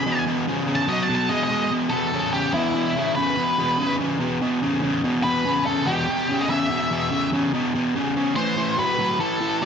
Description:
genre	rock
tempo	144 BPM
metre	4/4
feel	straight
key	E minor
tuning	A4 = 441 Hz
part	octave-fuzz lead guitar	melody	0.0-9.7 s	E4 to B5	-23 LUFS	left 1 dB	distortion, slapback echo
part	overdriven electric guitar	riff	0.0-9.7 s	E2 to G#3	-22 LUFS	equal	none
room	moderate large studio reverb, RT60 1.1 s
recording	nothing above 7.8 kHz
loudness	-20 LUFS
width	side -7 dB against mid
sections	0.0-1.7 A section; 1.7-9.7 B section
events	lead electric guitar solo 0.0-1.7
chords	0.0 E5; 0.9 B5; 1.7 E5; 8.4 Am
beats	| 0.05 0.47 0.88 1.29 | 1.71 2.13 2.54 2.96 | 3.37 3.79 4.21 4.62 | 5.04 5.45 5.87 6.28 | 6.70 7.11 7.53 7.94 | 8.36 8.78 9.19 9.61

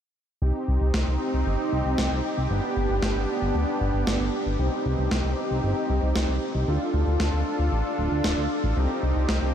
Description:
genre	synthwave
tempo	115 BPM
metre	4/4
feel	straight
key	C dorian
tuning	A4 = 440 Hz
part	soft supersaw	sustained chords	0.4-9.5 s	B3 to A4	-26 LUFS	equal	lush chorus
part	chorused synth bass	bass	0.4-9.5 s	D1 to D2	-25 LUFS	equal	none
part	electronic snare drum	drums	0.9-9.4 s	none	-32 LUFS	equal	gated reverb, gated reverb snare, overdrive
room	moderate huge ambient reverb, RT60 8.4 s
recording	dreamy mix soaked in reverb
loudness	-22 LUFS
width	side -9 dB against mid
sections	0.4-9.5 A section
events	filter sweep on analog synth bass 0.4-9.5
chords	0.4 Cm; 2.5 G; 4.6 Cm; 6.7 Dm; 8.8 Cm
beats	| 0.42 0.94 1.46 1.98 | 2.51 3.03 3.55 4.07 | 4.59 5.12 5.64 6.16 | 6.68 7.20 7.72 8.24 | 8.77 9.29

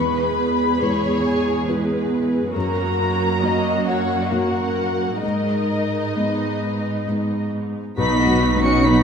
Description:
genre	cinematic, emotional film score for orchestra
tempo	64-70 BPM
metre	3/4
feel	rubato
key	G# minor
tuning	A4 = 439 Hz
part	muted symphonic violin section	melody	0.0-9.0 s	A#4 to C#7	-26 LUFS	left 5 dB	none
part	muted symphonic violin section	second line	0.0-9.0 s	D#4 to F#5	-26 LUFS	left 2 dB	none
part	felt-muted upright piano	accompaniment	0.0-9.0 s	B1 to B4	-24 LUFS	left 2 dB	none
part	muted symphonic viola section	accompaniment	0.0-9.0 s	F#3 to G#4	-26 LUFS	right 2 dB	none
part	muted studio cello section	bass	0.0-9.0 s	E2 to C#4	-24 LUFS	right 3 dB	none
part	dark clarinet	second line	8.0-9.0 s	D#4	-28 LUFS	right 1 dB	none
part	silver concert flute	second line	8.0-9.0 s	B5 to C#6	-26 LUFS	left 2 dB	none
part	warm oboe	second line	8.0-9.0 s	F#4	-26 LUFS	right 4 dB	none
part	dark French horn section	sustained chords	8.0-9.0 s	F#3 to D#4	-24 LUFS	left 3 dB	none
part	muted symphonic double bass section	bass	8.0-9.0 s	B1	-23 LUFS	right 2 dB	none
room	wet concert hall reverb, RT60 2.0 s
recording	none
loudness	-18 LUFS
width	side -6 dB against mid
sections	0.0-8.0 A section; 8.0-9.0 A section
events	none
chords	0.0 E; 2.5 F#; 5.2 G#m; 8.0 B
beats	0.81 1.69 | 2.55 3.42 4.31 | 5.23 6.15 7.07 | 7.98 8.85

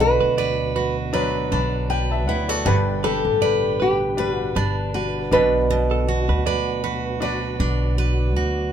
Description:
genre	acoustic pop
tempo	79 BPM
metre	4/4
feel	swing 55% on 16ths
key	unclear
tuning	A4 = 440 Hz
part	nylon-string guitar	melody	0.0-7.6 s	F#4 to B4	-21 LUFS	left 1 dB	none
part	bright upright piano	accompaniment	0.0-8.7 s	F#3 to B5	-28 LUFS	left 4 dB	none
part	picked steel-string acoustic guitar	accompaniment	0.0-8.7 s	G2 to B4	-24 LUFS	right 4 dB	none
part	mellow tonewheel organ	sustained chords	0.0-8.7 s	B2 to B4	-32 LUFS	equal	chorus vibrato, fast rotary speaker
part	upright bass	bass	0.0-8.7 s	G1 to D2	-24 LUFS	equal	none
part	direct-recorded clean electric guitar	arpeggios	0.2-7.0 s	A4 to D5	-28 LUFS	right 9 dB	none
room	light reverb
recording	minimal, uncompressed stereo recording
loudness	-19 LUFS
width	side -9 dB against mid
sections	0.0-8.7 A section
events	upright piano fill 1.1-2.7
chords	0.0 Bm; 2.7 G; 5.3 Bm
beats	0.38 1.14 1.90 | 2.66 3.42 4.18 4.94 | 5.70 6.46 7.22 7.98

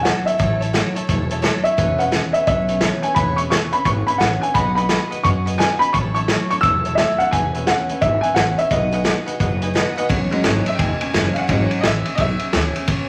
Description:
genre	rockabilly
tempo	173 BPM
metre	4/4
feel	swing 63% on 8ths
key	E major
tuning	A4 = 438 Hz
part	dark upright piano	melody	0.0-9.7 s	D#5 to E6	-21 LUFS	equal	none
part	picked steel-string acoustic guitar	accompaniment	0.0-13.1 s	C#3 to D#5	-30 LUFS	equal	none
part	upright bass	bass	0.0-13.1 s	E1 to F#2	-26 LUFS	equal	none
part	tack piano	accompaniment	0.1-12.9 s	F#3 to A5	-29 LUFS	equal	none
part	vintage drum kit	drums	0.1-13.0 s	hi-hat, kick drum, ride cymbal, snare drum	-24 LUFS	equal	none
room	moderate large studio reverb, RT60 0.9 s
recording	vinyl crackle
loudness	-19 LUFS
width	mono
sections	0.0-10.1 A section; 10.1-13.1 B section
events	honky-tonk piano solo 10.1-13.1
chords	0.0 A6; 1.8 E6; 4.6 B6; 5.9 A6; 7.3 E6; 8.7 B6; 10.1 E6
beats	0.05 | 0.40 0.75 1.09 1.44 | 1.79 2.13 2.48 2.83 | 3.17 3.52 3.86 4.21 | 4.56 4.90 5.25 5.59 | 5.94 6.29 6.63 6.98 | 7.33 7.67 8.02 8.37 | 8.71 9.06 9.41 9.75 | 10.10 10.45 10.80 11.14 | 11.49 11.84 12.19 12.53 | 12.88

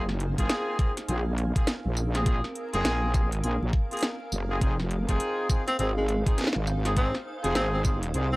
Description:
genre	glitch hop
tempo	102 BPM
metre	4/4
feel	swing 62% on 16ths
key	unclear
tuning	A4 = 440 Hz
part	mellow horn section	stabs	0.0-8.3 s	Bb3 to Ab4	-31 LUFS	equal	vintage 12-bit sampler grit, sidechain pumping, analog delay
part	wobble bass	bass	0.0-8.4 s	F1 to C2	-27 LUFS	equal	chorus
part	granular cloud pad	texture	0.0-8.4 s	C4 to Ab5	-39 LUFS	right 2 dB	built-in reverb, sidechain pumping
part	drum and bass drum kit	drums	0.1-8.3 s	hi-hat, snare drum, tambourine	-31 LUFS	equal	none
part	electronic kick drum	drums	0.4-8.0 s	none	-25 LUFS	equal	none
part	breathy tenor saxophone	melody	5.7-8.4 s	Ab3 to C4	-30 LUFS	equal	analog delay
room	digital ambience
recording	dry, gritty hardware recording, transformer saturation, vinyl crackle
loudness	-24 LUFS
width	side -22 dB against mid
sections	0.0-8.4 A section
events	none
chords	0.0 Gbmaj9#11; 4.6 Fm7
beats	0.49 1.08 1.67 | 2.26 2.85 3.44 4.02 | 4.61 5.20 5.79 6.38 | 6.96 7.55 8.14

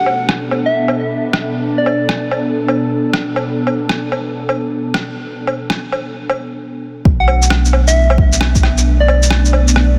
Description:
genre	future garage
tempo	133 BPM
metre	4/4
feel	swing 65% on 16ths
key	B minor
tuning	A4 = 440 Hz
part	soft struck synth lead	melody	0.0-2.4, 7.2-9.6 s	D5 to F#5	-22 LUFS	equal	chorus, tape echo
part	airy breathy pad	sustained chords	0.0-10.0 s	B2 to A4	-22 LUFS	equal	chorus, sidechain pumping
part	electronic woodblock, rim click and shaker	drums	0.1-9.9 s	none	-21 LUFS	equal	overdrive, low-pass filter on perc, small room ambience, low-pass filter on snare
part	warm sub bass	bass	7.1-10.0 s	B1	-15 LUFS	equal	sidechain pumping
part	electronic kick drum	drums	7.1-8.6 s	none	-15 LUFS	equal	small room ambience
room	light reverb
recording	dense, heavily limited modern master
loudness	-15 LUFS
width	mono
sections	0.0-7.1 A section; 7.1-10.0 B section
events	none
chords	0.0 Bm7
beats	0.29 0.74 1.19 | 1.64 2.09 2.54 2.99 | 3.44 3.90 4.35 4.80 | 5.25 5.70 6.15 6.60 | 7.05 7.50 7.96 8.41 | 8.86 9.31 9.76

